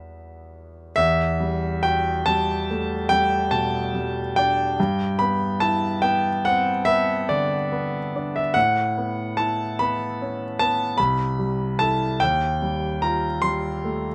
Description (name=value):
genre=classical, impressionist solo piano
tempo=48 BPM (dotted quarters)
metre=9/8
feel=uneven beats, rubato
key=E minor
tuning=A4 = 439 Hz
part: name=clear concert grand piano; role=solo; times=0.0-14.1 s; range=C2 to B#5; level=-23 LUFS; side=equal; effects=none
room=light reverb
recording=close, detailed microphones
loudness=-23 LUFS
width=mono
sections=1.0-14.1 A section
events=none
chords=0.0 Emadd9; 4.8 G6; 8.6 A69; 11.0 C6; 12.2 D#69